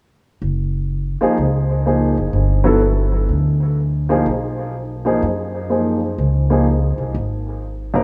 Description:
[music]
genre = jazz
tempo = 125 BPM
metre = 4/4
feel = swing 66% on 8ths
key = F# major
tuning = A4 = 439 Hz
[part]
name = upright bass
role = bass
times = 0.4-8.0 s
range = F#1 to F#2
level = -21 LUFS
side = equal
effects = none
[part]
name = warm upright piano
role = melody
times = 1.2-8.0 s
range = F#2 to A#4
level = -21 LUFS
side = equal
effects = tape echo
[sound]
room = moderate plate reverb, RT60 2.7 s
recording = dreamy mix soaked in reverb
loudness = -18 LUFS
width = mono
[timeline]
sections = 0.4-8.0 A section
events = none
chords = 0.4 F#maj7; 2.3 G5; 4.3 Bmaj7; 6.2 C#5

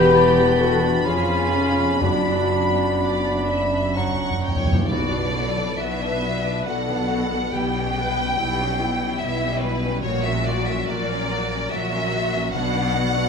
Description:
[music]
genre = classical, slow romantic movement for symphony orchestra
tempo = 61-77 BPM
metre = 3/4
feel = rubato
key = B minor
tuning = A4 = 439 Hz
[part]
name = rich symphonic violin section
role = melody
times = 0.0-13.3 s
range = B4 to C#6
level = -26 LUFS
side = left 1 dB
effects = none
[part]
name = mellow large flute ensemble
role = second line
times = 0.0-4.0 s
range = F#5 to B5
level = -28 LUFS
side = left 4 dB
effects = none
[part]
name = mellow oboe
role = second line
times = 0.0-4.5 s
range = G5 to B5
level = -30 LUFS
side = right 2 dB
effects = none
[part]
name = warm clarinet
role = second line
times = 0.0-4.4 s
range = C#4 to G4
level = -29 LUFS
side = left 1 dB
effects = none
[part]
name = warm symphonic violin section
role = second line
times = 0.0-13.3 s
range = A#3 to B5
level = -31 LUFS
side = equal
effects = none
[part]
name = mellow bassoon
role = accompaniment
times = 0.0-4.6 s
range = B3 to D4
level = -26 LUFS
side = equal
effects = none
[part]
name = rich symphonic viola section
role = accompaniment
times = 0.0-13.3 s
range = D4 to B4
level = -28 LUFS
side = left 1 dB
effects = none
[part]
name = mellow French horn section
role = sustained chords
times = 0.0-4.0 s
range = F#4 to B4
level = -22 LUFS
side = left 3 dB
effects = none
[part]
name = concert harp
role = arpeggios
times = 0.0-13.3 s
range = E2 to D5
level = -29 LUFS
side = left 3 dB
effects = none
[part]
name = rich symphonic cello section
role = bass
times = 0.0-13.2 s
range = E2 to B2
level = -28 LUFS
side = right 1 dB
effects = none
[part]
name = warm studio double bass section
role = bass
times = 0.0-13.2 s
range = E1 to B1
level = -29 LUFS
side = right 2 dB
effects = none
[part]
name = timpani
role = percussion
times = 2.0-6.2 s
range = F#2 to B2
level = -26 LUFS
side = right 1 dB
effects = none
[sound]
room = wet stone room reverb, RT60 1.1 s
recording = minimal, uncompressed stereo recording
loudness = -19 LUFS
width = side -6 dB against mid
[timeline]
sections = 0.0-4.9 A section; 4.9-13.3 B section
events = timpani fill 4.0-4.9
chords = 0.0 Em; 1.1 C#7/E#; 2.0 Bm/F#; 4.0 F#; 4.9 Bm; 7.5 C#m7b5/B; 10.0 F#/A#; 12.5 Bm

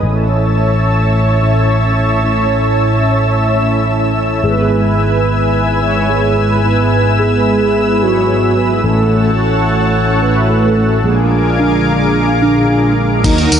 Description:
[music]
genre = synthwave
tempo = 109 BPM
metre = 4/4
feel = straight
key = unclear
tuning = A4 = 440 Hz
[part]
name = analog string pad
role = sustained chords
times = 0.0-13.6 s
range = A#4 to E6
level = -17 LUFS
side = left 1 dB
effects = ensemble chorus, sidechain pumping
[part]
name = mellow synth brass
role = stabs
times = 0.0-13.6 s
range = G#2 to E5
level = -16 LUFS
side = right 2 dB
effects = chorus, cassette tape, ping-pong delay
[part]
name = picked electric bass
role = bass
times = 0.0-13.6 s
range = G#1 to Eb2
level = -16 LUFS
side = left 1 dB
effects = low-pass filter
[part]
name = warm velvety synth lead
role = melody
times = 4.4-13.6 s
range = D4 to A4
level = -17 LUFS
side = right 1 dB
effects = chorus, tremolo, cassette tape, digital delay
[part]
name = electronic kick drum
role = drums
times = 13.2-13.4 s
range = none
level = -14 LUFS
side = left 1 dB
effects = none
[part]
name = gated 80s digital drum machine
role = drums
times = 13.2-13.6 s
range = crash cymbal, hi-hat, tambourine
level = -15 LUFS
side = right 1 dB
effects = none
[sound]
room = wet lush hall reverb, RT60 2.3 s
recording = big arena sound, nothing above 10.7 kHz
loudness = -10 LUFS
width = side -8 dB against mid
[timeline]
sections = 0.0-13.2 A section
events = filter sweep on analog polysynth 0.0-13.2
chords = 0.0 A; 4.4 E/G#; 8.8 F#m7/A; 11.0 A#7

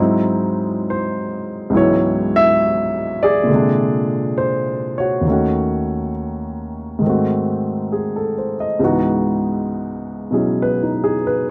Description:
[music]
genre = jazz ballad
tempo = 68 BPM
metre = 4/4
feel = swing 69% on 8ths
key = C# minor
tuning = A4 = 441 Hz
[part]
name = warm baby grand piano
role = solo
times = 0.0-11.5 s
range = C#2 to E5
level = -19 LUFS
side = equal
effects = none
[sound]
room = light reverb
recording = dry, close 1970s-style studio recording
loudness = -19 LUFS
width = mono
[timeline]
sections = 0.0-8.8 A section; 8.8-11.5 B section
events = none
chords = 0.0 G#7b13; 1.7 C#m7; 3.5 A#7; 5.2 D#m7b5; 7.0 G#7b9; 8.8 C#m11

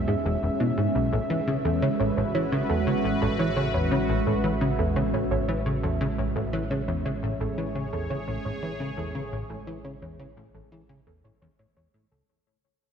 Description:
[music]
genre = ambient, sequencer-driven space music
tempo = 86 BPM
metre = 4/4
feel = straight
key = A major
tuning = A4 = 439 Hz
[part]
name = sweeping resonant pad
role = sustained chords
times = 0.0-12.3 s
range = G#3 to E5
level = -28 LUFS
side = right 1 dB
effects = chorus
[part]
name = plucky analog bass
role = riff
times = 0.0-12.2 s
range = E1 to E3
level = -28 LUFS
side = left 1 dB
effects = lush chorus, vintage 12-bit sampler grit, ping-pong delay
[part]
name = analog drone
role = bass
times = 0.0-12.3 s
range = A1 to E2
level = -35 LUFS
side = equal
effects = chorus
[part]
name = soft round pluck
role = arpeggios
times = 0.1-12.2 s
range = E4 to C#5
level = -34 LUFS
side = right 3 dB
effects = chorus, auto-pan, ping-pong delay
[sound]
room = wet lush hall reverb, RT60 2.9 s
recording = dark, warm production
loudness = -24 LUFS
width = side -7 dB against mid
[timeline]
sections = 0.0-12.3 A section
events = fade-out 4.8-12.3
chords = 0.0 E; 1.1 Amaj7

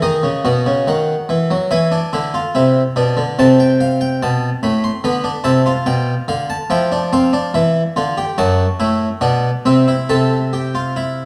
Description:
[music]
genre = classical, baroque-style 3-part fugue for harpsichord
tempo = 71 BPM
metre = 4/4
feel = straight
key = unclear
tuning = A4 = 440 Hz
[part]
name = harpsichord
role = solo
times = 0.0-11.3 s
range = F#2 to C6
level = -16 LUFS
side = equal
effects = none
[sound]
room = moderate recital hall reverb, RT60 1.5 s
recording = dark, warm production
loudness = -16 LUFS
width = mono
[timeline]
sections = 0.0-11.3 A section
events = none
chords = 0.0 B; 1.7 E7; 3.4 Am/C; 5.0 Bm7b5; 6.7 Dm/F; 8.4 D7/F#; 10.1 C

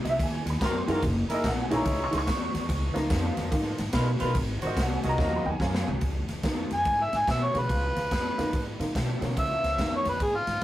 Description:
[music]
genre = electric blues shuffle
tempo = 144 BPM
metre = 4/4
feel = swing 64% on 8ths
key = Db mixolydian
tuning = A4 = 440 Hz
[part]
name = honky-tonk upright piano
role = accompaniment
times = 0.0-10.0 s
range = Fb3 to Db6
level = -31 LUFS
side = right 1 dB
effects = none
[part]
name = upright bass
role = bass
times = 0.0-10.6 s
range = Gb1 to Cb3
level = -30 LUFS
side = equal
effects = none
[part]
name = swinging big-band drum kit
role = drums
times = 0.1-10.6 s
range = kick drum, ride cymbal, snare drum, toms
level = -30 LUFS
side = equal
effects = none
[part]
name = clear horn section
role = stabs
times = 0.6-5.5 s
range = C4 to Eb5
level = -31 LUFS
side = equal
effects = none
[part]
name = overdriven harmonica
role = melody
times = 6.7-10.6 s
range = F4 to Ab5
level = -26 LUFS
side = equal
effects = none
[sound]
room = moderate studio reverb, RT60 0.6 s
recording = rough rehearsal-room recording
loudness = -25 LUFS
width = side -14 dB against mid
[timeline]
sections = 0.0-6.0 A section; 6.0-10.6 B section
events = drum fill 5.2-6.0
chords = 0.0 Ab13; 1.0 Gb13; 2.7 Db13; 4.4 Ab13; 6.0 Db13

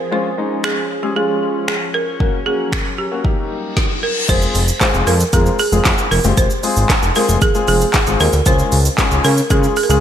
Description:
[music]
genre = dance-pop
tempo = 115 BPM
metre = 4/4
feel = straight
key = F minor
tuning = A4 = 440 Hz
[part]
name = folk marimba with hard mallets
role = melody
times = 0.0-10.0 s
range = G4 to C5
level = -20 LUFS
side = right 3 dB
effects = slapback echo
[part]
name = sweeping resonant pad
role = sustained chords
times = 0.0-3.8 s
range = F3 to Bb4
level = -28 LUFS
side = right 2 dB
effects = chorus, sidechain pumping
[part]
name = warm grand piano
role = accompaniment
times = 0.1-10.0 s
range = Ab3 to Bb4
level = -21 LUFS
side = left 5 dB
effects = sidechain pumping, slapback echo
[part]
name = deep house drum kit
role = drums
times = 0.6-10.0 s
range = crash cymbal, finger snaps, handclaps, hi-hat, kick drum, shaker, snare drum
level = -17 LUFS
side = equal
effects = none
[part]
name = reverse cymbal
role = sound effects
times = 3.7-4.3 s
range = none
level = -25 LUFS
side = left 4 dB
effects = none
[part]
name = fat analog bass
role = bass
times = 4.3-10.0 s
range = F1 to Db3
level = -16 LUFS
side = equal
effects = sidechain pumping
[sound]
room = light reverb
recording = none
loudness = -13 LUFS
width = side -10 dB against mid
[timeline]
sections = 0.0-4.3 A section; 4.3-10.0 B section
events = reverse cymbal 3.7-4.3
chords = 0.1 Db; 2.2 Gb; 3.2 Eb; 4.3 Fm; 8.5 Db

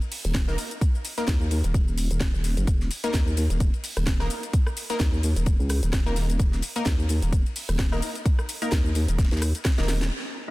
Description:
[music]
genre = bass house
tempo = 129 BPM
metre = 4/4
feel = swing 56% on 16ths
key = unclear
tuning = A4 = 440 Hz
[part]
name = house drum kit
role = drums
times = 0.0-10.2 s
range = crash cymbal, hi-hat, rim click, shaker, snare drum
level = -32 LUFS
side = equal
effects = low-pass filter on hats, low-pass filter on perc, low-pass filter on snare, low-pass filter on cymbals
[part]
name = modern studio drum kit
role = drums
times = 0.0-10.0 s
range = hi-hat, ride cymbal, snare drum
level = -42 LUFS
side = left 2 dB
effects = sidechain pumping on cymbals, high-pass filter on cymbals, sidechain pumping on hats, high-pass filter on hats, high-pass filter on snare, high-pass filter on room
[part]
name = vowel-sweep wobble bass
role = bass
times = 0.2-10.1 s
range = Eb1 to Eb2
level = -24 LUFS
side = equal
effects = chorus, tube saturation, sidechain pumping
[part]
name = electronic kick drum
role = drums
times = 0.3-9.8 s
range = none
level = -23 LUFS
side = equal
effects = none
[part]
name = orchestra-hit-like synth stab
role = stabs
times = 0.5-10.5 s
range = Bb3 to Bb4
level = -33 LUFS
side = left 1 dB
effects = built-in reverb, sidechain pumping, dub echo
[sound]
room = small room ambience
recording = dense, heavily limited modern master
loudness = -22 LUFS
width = side -20 dB against mid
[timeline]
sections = 0.0-10.1 A section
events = drum fill 9.8-10.1; band accent 10.0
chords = 0.0 Eb5

